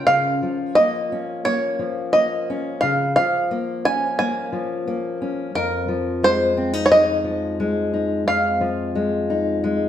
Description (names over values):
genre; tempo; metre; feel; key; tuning
folk; 88 BPM; 4/4; straight; unclear; A4 = 441 Hz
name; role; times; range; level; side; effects
bluegrass banjo; melody; 0.0-9.9 s; Bb4 to Ab5; -19 LUFS; right 1 dB; none
fingerpicked steel-string acoustic guitar; accompaniment; 0.0-9.9 s; F2 to Bb4; -23 LUFS; left 2 dB; none
room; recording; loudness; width
wet stone room reverb, RT60 1.3 s; band playing live in one room; -18 LUFS; side -10 dB against mid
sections
0.0-9.9 A section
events
none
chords
0.0 Bbm/Db; 5.6 Fm7